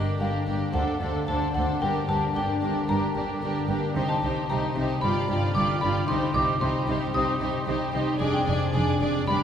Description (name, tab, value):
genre	cinematic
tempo	112 BPM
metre	4/4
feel	straight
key	G minor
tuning	A4 = 441 Hz
part	dark studio violin section	melody	0.0-9.4 s	Bb4 to D5	-34 LUFS	left 2 dB	none
part	xylophone with wooden mallets	melody	0.0-9.4 s	Eb5 to Eb6	-29 LUFS	left 1 dB	none
part	warm studio violin section	second line	0.0-9.4 s	G4 to A4	-33 LUFS	left 2 dB	none
part	rich studio viola section	accompaniment	0.0-9.4 s	D4 to F4	-31 LUFS	right 3 dB	none
part	concert harp	arpeggios	0.0-9.4 s	F2 to F4	-30 LUFS	left 4 dB	none
part	clear studio cello section	bass	0.0-9.4 s	D2 to C3	-32 LUFS	right 2 dB	none
part	dark studio double bass section	bass	0.2-9.4 s	F1 to D2	-32 LUFS	right 2 dB	none
room	wet cathedral reverb, RT60 6.6 s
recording	recorded in a church or concert hall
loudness	-23 LUFS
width	side -8 dB against mid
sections	0.0-9.4 A section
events	none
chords	0.0 Gm; 0.8 D7; 1.8 Gm; 4.0 Cm; 5.0 G7; 6.1 Cm; 8.2 Dm7b5/F